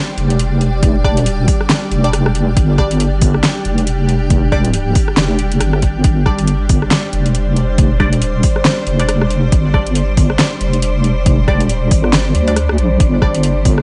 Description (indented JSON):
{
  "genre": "deep dubstep",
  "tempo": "138 BPM",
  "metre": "4/4",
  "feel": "swing 59% on 16ths, half-time",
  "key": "unclear",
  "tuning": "A4 = 441 Hz",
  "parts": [
    { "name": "granular cloud pad", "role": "sustained chords", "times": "0.1-13.8 s", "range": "G3 to D5", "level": "-25 LUFS", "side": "equal", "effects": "built-in reverb" },
    { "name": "filtered dub chord stab", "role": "stabs", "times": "0.0-13.8 s", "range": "G3 to D5", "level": "-26 LUFS", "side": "equal", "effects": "phaser, dub echo" },
    { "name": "wind-like tuned noise texture", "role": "texture", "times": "0.1-13.8 s", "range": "G4 to D5", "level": "-30 LUFS", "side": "equal", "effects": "built-in reverb" },
    { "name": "deep soft wobble bass", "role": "bass", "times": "0.2-13.8 s", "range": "F1 to D2", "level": "-17 LUFS", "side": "equal", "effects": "chorus" },
    { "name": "deep house drum kit", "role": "drums", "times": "0.2-13.8 s", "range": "hi-hat, rim click, snare drum", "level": "-20 LUFS", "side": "equal", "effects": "overdrive" },
    { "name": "electronic kick drum", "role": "drums", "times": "0.8-13.8 s", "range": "none", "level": "-17 LUFS", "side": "equal", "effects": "overdrive" }
  ],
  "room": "light reverb, digital ambience",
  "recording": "vinyl crackle, nothing above 10.6 kHz",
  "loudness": "-14 LUFS",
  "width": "mono",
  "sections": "0.0-13.8 A section",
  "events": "none",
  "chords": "0.0 G5"
}